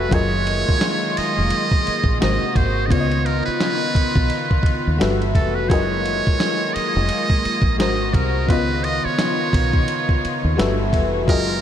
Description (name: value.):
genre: R&B, neo-soul.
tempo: 86 BPM.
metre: 4/4.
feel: swing 57% on 16ths.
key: F# major.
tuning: A4 = 439 Hz.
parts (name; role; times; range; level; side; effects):
trumpet with metal mute; melody; 0.0-11.6 s; A4 to D#5; -23 LUFS; right 3 dB; none.
FM electric piano; accompaniment; 0.0-11.6 s; C#3 to E5; -23 LUFS; left 4 dB; chorus.
rich studio string section; sustained chords; 0.0-11.6 s; B#2 to F#4; -27 LUFS; equal; none.
deep dub fingered electric bass; bass; 0.0-11.6 s; E#1 to D#2; -23 LUFS; equal; none.
dusty soul sampler-style drum kit; drums; 0.1-11.5 s; hi-hat, kick drum, ride cymbal, snare drum; -22 LUFS; equal; none.
room: moderate huge ambient reverb, RT60 8.2 s.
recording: dreamy mix soaked in reverb.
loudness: -17 LUFS.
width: side -10 dB against mid.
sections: 0.0-11.6 A section.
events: none.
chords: 0.1 F#maj13; 2.2 G#9; 2.9 C#9; 5.0 Gmaj13; 5.7 F#maj13; 7.8 G#9; 8.5 C#9; 10.6 Gmaj13.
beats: | 0.12 0.81 1.51 2.21 | 2.91 3.60 4.30 5.00 | 5.70 6.39 7.09 7.79 | 8.49 9.19 9.88 10.58 | 11.28.